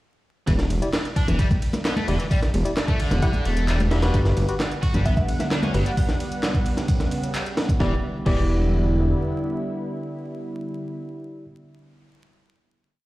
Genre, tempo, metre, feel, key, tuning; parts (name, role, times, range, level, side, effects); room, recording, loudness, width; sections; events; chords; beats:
breakbeat, breaks; 131 BPM; 4/4; straight; E dorian; A4 = 436 Hz
overdriven electric guitar; riff; 0.5-8.4 s; D3 to F#4; -31 LUFS; equal; vintage 12-bit sampler grit, digital delay
dark detuned saw bass; bass; 0.5-9.1 s; E1 to G1; -21 LUFS; equal
breakbeat sampler-style drum kit; drums; 0.5-8.4 s; crash cymbal, hi-hat, kick drum, ride cymbal, snare drum; -23 LUFS; equal; studio reverb
house drum kit; drums; 0.5-7.8 s; handclaps, hi-hat, ride cymbal; -35 LUFS; equal; studio reverb
congas; percussion; 0.7-5.7 s; -30 LUFS; left 1 dB
barky tine electric piano; stabs; 0.8-11.4 s; E4 to F#5; -30 LUFS; left 1 dB; vintage 12-bit sampler grit, digital delay
lush unison pad; sustained chords; 4.5-11.0 s; C#3 to F#5; -28 LUFS; right 1 dB; chorus, sidechain pumping
mallet-like synth pluck; melody; 5.1-5.6 s; E5; -33 LUFS; equal; chorus, old record sound, cassette tape, digital delay
light reverb; played on a big sound system in a bare room, large studio reverb, vinyl crackle; -20 LUFS; side -18 dB against mid
0.5-7.8 drop; 7.8-11.5 final chord
drop 0.5-7.8
0.5 Em7; 4.1 Gmaj7; 6.0 Gmaj7#11/C#; 7.8 Em7
| 0.48 0.94 1.39 1.85 | 2.31 2.77 3.23 3.68 | 4.14 4.60 5.06 5.51 | 5.97 6.43 6.89 7.35 | 7.81 8.26 8.72 9.18 | 9.64 10.10 10.55 11.01